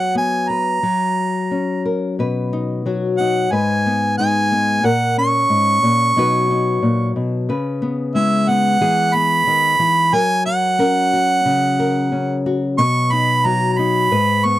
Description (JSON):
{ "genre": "acoustic folk-pop ballad", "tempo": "90 BPM", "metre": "4/4", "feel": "straight", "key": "B major", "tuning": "A4 = 440 Hz", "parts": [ { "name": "clear harmonica", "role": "melody", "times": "0.0-14.6 s", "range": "E5 to C#6", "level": "-16 LUFS", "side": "right 2 dB", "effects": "none" }, { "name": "nylon-string guitar", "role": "accompaniment", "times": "0.0-14.6 s", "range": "G#2 to B4", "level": "-18 LUFS", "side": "left 2 dB", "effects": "none" } ], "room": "light reverb", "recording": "dry, close 1970s-style studio recording", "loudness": "-15 LUFS", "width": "side -14 dB against mid", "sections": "0.0-2.2 A section; 2.2-14.6 B section", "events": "none", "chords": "0.0 B5/F#; 0.8 F#; 2.2 B; 3.5 G#m; 4.8 G#9sus4; 6.2 B; 7.5 C#m7; 8.8 E; 10.1 F#; 12.8 B", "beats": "0.14 0.82 1.50 | 2.18 2.85 3.51 4.18 | 4.84 5.50 6.16 6.82 | 7.48 8.14 8.80 9.46 | 10.13 10.79 11.45 12.12 | 12.79 13.45 14.12" }